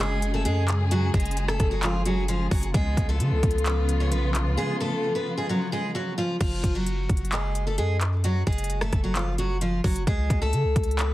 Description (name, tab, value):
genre	hip hop, trap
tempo	131 BPM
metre	4/4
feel	half-time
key	F# harmonic minor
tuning	A4 = 440 Hz
part	picked steel-string acoustic guitar	melody	0.0-11.1 s	E#3 to C#5	-28 LUFS	equal	digital delay
part	dark symphonic string section	sustained chords	0.0-6.4 s	C#3 to G#4	-31 LUFS	equal	none
part	warm 808-style bass	bass	0.0-11.1 s	F#1 to C#3	-25 LUFS	equal	none
part	trap drum kit	drums	0.2-11.1 s	crash cymbal, handclaps, hi-hat, kick drum, rim click	-26 LUFS	equal	soft clipping on snare
room	digital ambience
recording	dense, heavily limited modern master, vinyl crackle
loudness	-22 LUFS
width	side -16 dB against mid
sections	0.0-6.4 A section; 6.4-11.1 B section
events	break 4.6-6.4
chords	0.0 F#sus2; 2.7 C#7; 6.4 F#sus2; 10.1 C#7(no3)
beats	0.45 | 0.91 1.37 1.83 2.29 | 2.74 3.20 3.66 4.12 | 4.58 5.03 5.49 5.95 | 6.41 6.87 7.32 7.78 | 8.24 8.70 9.15 9.61 | 10.07 10.53 10.99